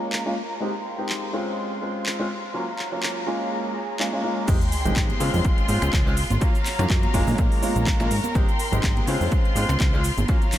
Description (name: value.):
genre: filtered disco house.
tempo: 124 BPM.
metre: 4/4.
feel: swing 56% on 16ths.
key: unclear.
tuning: A4 = 438 Hz.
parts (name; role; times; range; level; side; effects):
clear baby grand piano; accompaniment; 0.0-10.4 s; Gb3 to G4; -27 LUFS; equal; phaser, sidechain pumping, low-pass filter.
rich symphonic string section; sustained chords; 0.0-10.6 s; Gb3 to C6; -30 LUFS; left 1 dB; vintage 12-bit sampler grit, sidechain pumping, low-pass filter.
house drum kit; drums; 0.1-10.6 s; cabasa, crash cymbal, finger snaps, handclaps, hi-hat; -31 LUFS; equal; overdrive, sidechain pumping on hats, sidechain pumping on cymbals, sidechain pumping on perc.
plucky analog bass; bass; 4.5-10.3 s; Gb1 to Db3; -24 LUFS; equal; sidechain pumping, low-pass filter.
electronic kick drum; drums; 4.5-10.4 s; none; -22 LUFS; equal; overdrive.
egg shaker and congas; percussion; 4.5-10.6 s; none; -33 LUFS; right 4 dB; none.
sub drop; sound effects; 4.5-6.4 s; none; -30 LUFS; equal; none.
room: light reverb, digital ambience.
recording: none.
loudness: -20 LUFS.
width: side -12 dB against mid.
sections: 0.0-4.5 A section; 4.5-10.6 B section.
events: filter sweep 0.0-4.5; drop 4.5-10.6; impact 4.5-6.4.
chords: 0.0 Bbm7; 0.6 Abmaj7; 1.3 Dbmaj7; 2.5 Gbmaj7; 3.5 Bbm7; 4.5 Abmaj7; 5.2 Dbmaj7; 6.4 Gbmaj7; 7.4 Bbm7; 8.4 Abmaj7; 9.1 Dbmaj7.